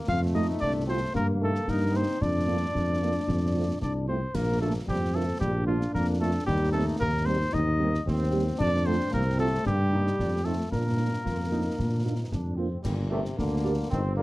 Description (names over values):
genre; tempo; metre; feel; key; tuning
military-style march for wind band; 113 BPM; 2/4; straight; Bb major; A4 = 440 Hz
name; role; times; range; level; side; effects
warm trombone section; sustained chords; 0.0-14.2 s; G3 to F4; -35 LUFS; equal; none
mellow cornet; melody; 0.1-14.2 s; F4 to F5; -32 LUFS; equal; none
clear euphonium; second line; 0.1-14.2 s; Bb2 to F4; -34 LUFS; left 4 dB; none
mellow tuba; bass; 0.1-14.2 s; G1 to Bb2; -28 LUFS; equal; none
concert snare drum, clash cymbals and concert bass drum; drums; 0.1-14.1 s; none; -34 LUFS; right 1 dB; none
dark French horn section; accompaniment; 0.3-14.2 s; G3 to Bb4; -33 LUFS; right 4 dB; none
room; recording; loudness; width
light reverb; dark, warm production; -24 LUFS; side -18 dB against mid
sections
0.0-12.9 A section; 12.9-14.2 B section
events
none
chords
0.1 F; 1.2 Eb/G; 2.2 Bb/F; 3.3 F; 4.3 Bb; 6.5 Cm/Eb; 8.6 F; 9.7 Eb/G; 10.2 F7; 10.7 Bb; 12.9 Gm